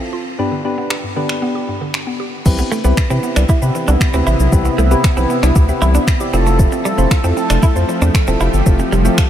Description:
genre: dance-pop.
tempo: 116 BPM.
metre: 4/4.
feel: straight.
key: C major.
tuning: A4 = 440 Hz.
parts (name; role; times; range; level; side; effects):
soft electric-piano-like synth keys; accompaniment; 0.0-9.2 s; B3 to D5; -21 LUFS; left 1 dB; chorus, sidechain pumping.
mallet-like synth pluck; arpeggios; 0.0-9.3 s; G2 to F5; -26 LUFS; right 1 dB; chorus, sidechain pumping, ping-pong delay.
smooth R&B drum kit; drums; 0.9-9.3 s; crash cymbal, finger snaps, kick drum, shaker; -18 LUFS; equal; overdrive.
soft supersaw; sustained chords; 2.5-9.3 s; C3 to A4; -20 LUFS; equal; analog chorus, sidechain pumping.
round analog bass; bass; 2.5-9.1 s; E1 to C3; -15 LUFS; equal; sidechain pumping.
direct-recorded clean electric guitar; riff; 2.6-9.2 s; G3 to E4; -22 LUFS; right 4 dB; lush chorus.
room: light reverb.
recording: none.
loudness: -13 LUFS.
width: side -10 dB against mid.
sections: 0.0-2.5 A section; 2.5-9.3 B section.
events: kick muted 0.4-2.5.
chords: 0.4 G; 2.5 Cmaj7; 6.3 Fmaj7.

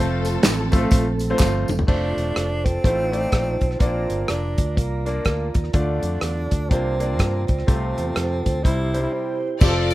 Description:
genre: uptempo gospel.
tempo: 124 BPM.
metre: 4/4.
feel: swing 60% on 8ths.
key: F major.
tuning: A4 = 440 Hz.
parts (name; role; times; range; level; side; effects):
rich symphonic string section; melody; 0.0-1.4, 9.6-9.9 s; C4 to D5; -26 LUFS; left 2 dB; none.
bright concert grand piano; accompaniment; 0.0-9.9 s; A2 to D5; -27 LUFS; left 2 dB; none.
mellow tonewheel organ; sustained chords; 0.0-9.6 s; F3 to Bb5; -29 LUFS; right 4 dB; slow rotary speaker.
fingered electric bass; bass; 0.0-9.9 s; E1 to G2; -25 LUFS; equal; none.
tambourine and handclaps; percussion; 0.2-1.8, 9.6-9.9 s; none; -32 LUFS; equal; none.
warm soul drum kit; drums; 0.3-9.9 s; crash cymbal, hi-hat, kick drum, rim click, snare drum, toms; -19 LUFS; equal; none.
breathy tenor saxophone; melody; 1.9-9.5 s; Bb3 to E4; -28 LUFS; right 1 dB; none.
room: light reverb, small room ambience.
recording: rough home demo mix.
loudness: -19 LUFS.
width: side -16 dB against mid.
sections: 0.0-1.9 A section; 1.9-9.6 B section.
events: drum fill 1.4-1.9; break 9.1-9.6.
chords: 0.0 F; 2.8 F7/A; 3.8 Bb; 5.7 Dm; 6.7 C9sus4; 7.7 F/C; 8.6 C.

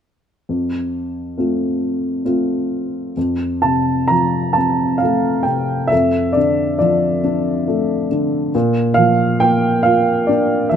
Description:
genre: classical, lyrical solo piano.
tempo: 68 BPM.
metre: 3/4.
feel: rubato.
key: F major.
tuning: A4 = 442 Hz.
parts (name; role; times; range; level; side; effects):
dark upright piano; solo; 0.5-10.8 s; F2 to Bb5; -15 LUFS; equal; none.
room: light reverb.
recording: close, detailed microphones.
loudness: -15 LUFS.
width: side -8 dB against mid.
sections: 0.5-3.2 A section; 3.2-10.8 B section.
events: none.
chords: 0.5 F; 5.9 Dm/F; 8.5 Bb.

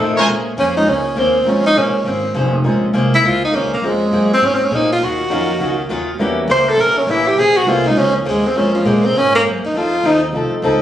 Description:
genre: jazz.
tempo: 203 BPM.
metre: 4/4.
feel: swing 63% on 8ths.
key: Bb minor.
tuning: A4 = 440 Hz.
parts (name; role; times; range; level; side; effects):
picked swing-style acoustic guitar; accompaniment; 0.0-10.8 s; F2 to C5; -20 LUFS; left 2 dB; none.
warm grand piano; accompaniment; 0.0-10.8 s; F3 to F5; -22 LUFS; right 1 dB; none.
upright bass; bass; 0.0-10.8 s; F1 to Bb2; -23 LUFS; equal; none.
warm tenor saxophone; melody; 0.6-10.3 s; F3 to C5; -14 LUFS; right 1 dB; none.
room: wet large studio reverb, RT60 1.4 s.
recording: recorded on a phone in the room, studio ambience, compression, faint mains hum.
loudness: -13 LUFS.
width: side -11 dB against mid.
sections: 0.3-10.8 A section.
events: tenor saxophone solo 0.3-10.8.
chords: 0.3 Bbm9; 5.0 Ebm9; 6.2 Edim7; 7.4 Bbm9; 9.7 F7.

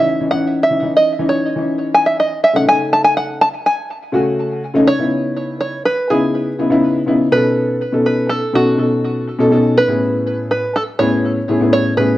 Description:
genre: progressive instrumental, progressive.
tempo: 122 BPM.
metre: 5/4.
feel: straight.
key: C# minor.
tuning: A4 = 440 Hz.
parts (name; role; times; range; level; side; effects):
open-back banjo; melody; 0.0-12.2 s; F#4 to A5; -16 LUFS; right 1 dB; plate reverb, tape echo.
dark grand piano; accompaniment; 0.0-12.2 s; A2 to A4; -16 LUFS; left 1 dB; none.
room: moderate studio reverb, RT60 0.8 s.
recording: worn, warbling old tape, cassette tape, warbly pitch drift.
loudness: -13 LUFS.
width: side -15 dB against mid.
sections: 0.0-4.9 A section; 4.9-12.2 B section.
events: five-string banjo solo 0.0-4.9.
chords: 0.0 C#madd9; 2.4 F#m69/C#; 4.9 C#m7; 7.3 B7; 9.8 Amaj9.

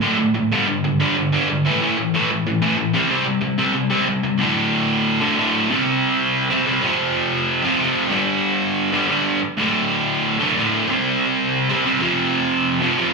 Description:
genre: punk.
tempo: 185 BPM.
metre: 4/4.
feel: straight.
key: unclear.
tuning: A4 = 440 Hz.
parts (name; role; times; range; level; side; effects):
distorted electric guitar; solo; 0.0-13.1 s; D2 to C4; -17 LUFS; equal; distortion, slapback echo.
room: moderate club reverb, RT60 0.6 s.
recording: live gig heard through the venue's PA, club reverb, studio ambience.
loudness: -17 LUFS.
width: side -3 dB against mid.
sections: 0.0-4.4 A section; 4.4-13.1 B section.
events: none.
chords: 0.0 D5; 0.5 G5; 1.6 A5; 2.9 C5; 4.4 D5; 5.7 C5; 6.8 F5; 8.1 G5; 9.6 D5; 10.9 C5; 12.0 F5.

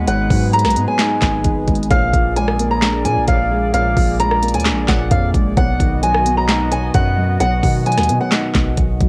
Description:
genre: hip hop, trap.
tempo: 131 BPM.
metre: 4/4.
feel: half-time.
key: unclear.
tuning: A4 = 440 Hz.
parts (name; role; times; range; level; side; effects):
picked old ladder-braced acoustic guitar; melody; 0.0-9.1 s; F5 to Bb5; -21 LUFS; equal; cassette tape.
felt-muted upright piano; accompaniment; 0.0-9.1 s; Ab2 to Eb4; -24 LUFS; equal; cassette tape.
warbly tape-like pad; sustained chords; 0.0-9.1 s; Ab3 to D#5; -30 LUFS; equal; chorus, built-in reverb, cassette tape.
long sustained 808-style bass; bass; 0.0-9.1 s; Ab1 to B2; -23 LUFS; equal; none.
trap drum kit; drums; 0.1-9.1 s; handclaps, hi-hat, kick drum, rim click, snare drum; -20 LUFS; equal; overdrive.
room: little or no reverb.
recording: home recording on cassette.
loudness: -16 LUFS.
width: mono.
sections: 0.0-9.1 A section.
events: none.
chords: 0.0 Abm7; 1.9 Bb7; 5.6 B.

